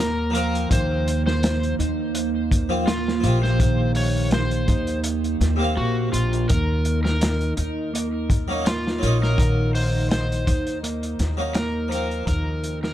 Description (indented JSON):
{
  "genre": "trip hop",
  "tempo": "83 BPM",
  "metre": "4/4",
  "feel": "swing 55% on 16ths",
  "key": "Eb dorian",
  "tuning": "A4 = 440 Hz",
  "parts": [
    { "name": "overdriven slide guitar", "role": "melody", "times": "0.0-12.9 s", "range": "F4 to Db5", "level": "-29 LUFS", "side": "left 1 dB", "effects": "tape echo" },
    { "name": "warbly tape-like pad", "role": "sustained chords", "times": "0.2-12.9 s", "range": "Bb3 to Eb4", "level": "-30 LUFS", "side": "right 5 dB", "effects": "chorus, built-in reverb" },
    { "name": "mellow electric guitar", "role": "arpeggios", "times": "0.0-12.9 s", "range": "Eb3 to Eb4", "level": "-29 LUFS", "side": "right 2 dB", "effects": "vintage 12-bit sampler grit, tape echo" },
    { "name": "upright bass", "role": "bass", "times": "0.0-12.9 s", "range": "Bb1 to Eb2", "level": "-24 LUFS", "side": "equal", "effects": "none" },
    { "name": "harpsichord", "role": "accompaniment", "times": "0.3-12.9 s", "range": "C3 to F5", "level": "-29 LUFS", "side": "left 1 dB", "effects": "tremolo, tape echo" },
    { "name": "crunchy breakbeat drum kit", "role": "drums", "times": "0.3-12.9 s", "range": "hi-hat, kick drum, snare drum", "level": "-24 LUFS", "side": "equal", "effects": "none" }
  ],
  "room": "small room ambience",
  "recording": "dark, warm production",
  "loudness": "-20 LUFS",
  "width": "side -12 dB against mid",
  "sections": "0.0-12.9 A section",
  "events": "fade-out 10.3-12.9",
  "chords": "0.0 Bbsus2; 6.5 Ebm7; 12.3 Bbsus2"
}